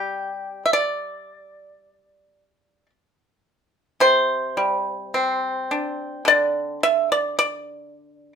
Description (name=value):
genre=chinese traditional, Chinese solo plucked strings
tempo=52-58 BPM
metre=4/4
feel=rubato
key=unclear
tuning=A4 = 440 Hz
part: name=pipa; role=solo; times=0.0-8.4 s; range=C3 to E5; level=-19 LUFS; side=equal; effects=none
room=moderate studio reverb, RT60 0.6 s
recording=minimal, uncompressed stereo recording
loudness=-19 LUFS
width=side -6 dB against mid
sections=0.0-8.4 A section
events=none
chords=none